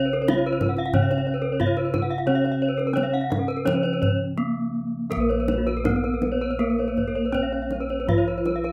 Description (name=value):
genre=Balinese gamelan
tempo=81-95 BPM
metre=4/4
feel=straight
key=Bb pelog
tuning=A4 = 439 Hz
part: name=gamelan-type bronze metallophone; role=melody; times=0.0-8.7 s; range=Bb3 to F4-30c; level=-30 LUFS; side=equal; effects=none
part: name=gamelan-type bronze metallophone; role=accompaniment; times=0.0-8.7 s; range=Db3-30c to Bb3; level=-35 LUFS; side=equal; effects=none
part: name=gamelan-type bronze metallophone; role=arpeggios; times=0.0-8.7 s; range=Bb4 to Gb5-20c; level=-30 LUFS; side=equal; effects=none
part: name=gamelan-type bossed gongs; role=bass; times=0.0-8.7 s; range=Bb1 to Bb4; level=-31 LUFS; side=equal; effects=none
part: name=gamelan-type bronze metallophone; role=arpeggios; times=0.1-8.6 s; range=Gb4-20c to Gb5-20c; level=-33 LUFS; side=equal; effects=none
part: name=kendang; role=percussion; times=0.1-8.7 s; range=none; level=-30 LUFS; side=equal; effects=none
room=moderate small room reverb, RT60 0.6 s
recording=rough home demo mix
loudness=-24 LUFS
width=mono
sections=0.0-5.1 A section; 5.1-8.7 B section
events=none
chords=none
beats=0.30 0.94 1.60 | 2.27 2.96 3.66 4.38 | 5.11 5.85 6.59 7.33 | 8.07